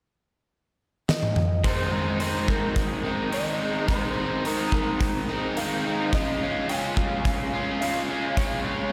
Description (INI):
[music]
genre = rock, shoegaze and dream pop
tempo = 107 BPM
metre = 4/4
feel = straight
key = Ab major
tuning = A4 = 439 Hz
[part]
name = electric guitar through a small old amp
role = melody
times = 1.1-8.9 s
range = Bb4 to Ab5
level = -34 LUFS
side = equal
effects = spring reverb, delay
[part]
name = huge arena drum kit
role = drums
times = 1.1-8.5 s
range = hi-hat, kick drum, snare drum, toms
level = -30 LUFS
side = equal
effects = none
[part]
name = overdriven electric guitar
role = riff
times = 1.6-8.9 s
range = Ab2 to F4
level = -28 LUFS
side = equal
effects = lush chorus
[sound]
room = wet lush hall reverb, RT60 2.1 s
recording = dreamy mix soaked in reverb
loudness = -26 LUFS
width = mono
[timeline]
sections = 0.0-1.6 A section; 1.6-8.9 B section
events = drum fill 1.1-1.6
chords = 0.0 N.C.; 1.6 Abadd9; 6.1 Db